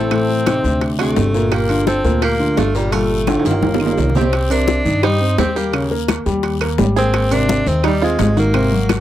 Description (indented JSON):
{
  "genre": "Afro-Cuban jazz",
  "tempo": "171 BPM",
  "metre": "4/4",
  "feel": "straight",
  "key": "G minor, C minor from 4.3 s",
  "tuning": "A4 = 440 Hz",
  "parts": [
    { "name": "bright tenor saxophone", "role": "melody", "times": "0.0-9.0 s", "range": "G3 to Eb4", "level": "-20 LUFS", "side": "equal", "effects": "none" },
    { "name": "bluegrass banjo", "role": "second line", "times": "0.0-9.0 s", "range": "Eb4 to C5", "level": "-26 LUFS", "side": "right 9 dB", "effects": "none" },
    { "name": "warm concert grand piano", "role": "accompaniment", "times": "0.0-9.0 s", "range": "A2 to G5", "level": "-19 LUFS", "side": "left 1 dB", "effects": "none" },
    { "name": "upright bass", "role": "bass", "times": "0.0-9.0 s", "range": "G1 to G2", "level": "-19 LUFS", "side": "equal", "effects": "none" },
    { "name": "bongos", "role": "percussion", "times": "0.1-9.0 s", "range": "none", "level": "-24 LUFS", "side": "left 12 dB", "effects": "none" },
    { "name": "claves", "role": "percussion", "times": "0.1-9.0 s", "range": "none", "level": "-30 LUFS", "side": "right 20 dB", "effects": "none" },
    { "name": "congas", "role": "percussion", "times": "0.1-9.0 s", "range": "none", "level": "-24 LUFS", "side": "left 4 dB", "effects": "none" },
    { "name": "guiro", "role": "percussion", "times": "0.1-9.0 s", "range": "none", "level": "-34 LUFS", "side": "left 18 dB", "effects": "none" },
    { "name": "timbales", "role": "percussion", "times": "0.1-9.0 s", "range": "none", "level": "-25 LUFS", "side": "right 8 dB", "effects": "none" }
  ],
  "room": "little or no reverb",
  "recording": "dry, close 1970s-style studio recording",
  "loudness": "-14 LUFS",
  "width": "side -12 dB against mid",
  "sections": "0.0-4.3 A section; 4.3-9.0 B section",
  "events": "drum fill 3.3-4.3",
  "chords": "0.1 Adim; 0.8 D7b13; 1.5 Gm9; 3.6 Eb69/G; 4.3 Cm9; 5.7 Eb7; 7.1 Abmaj13",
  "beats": "| 0.11 0.46 0.81 1.17 | 1.52 1.87 2.22 2.57 | 2.92 3.27 3.63 3.98 | 4.33 4.68 5.03 5.38 | 5.73 6.08 6.44 6.79 | 7.14 7.49 7.84 8.19 | 8.54 8.90"
}